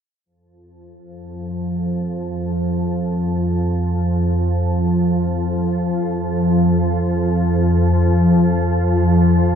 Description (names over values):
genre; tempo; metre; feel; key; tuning
ambient; free time; none; none; unclear; A4 = 440 Hz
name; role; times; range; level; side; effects
organ-like drone; drone; 1.3-9.6 s; F2 to F3; -16 LUFS; equal; ensemble chorus, built-in reverb
room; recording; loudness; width
moderate huge ambient reverb, RT60 8.3 s; none; -16 LUFS; side -8 dB against mid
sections
0.3-9.6 A section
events
none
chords
0.3 F5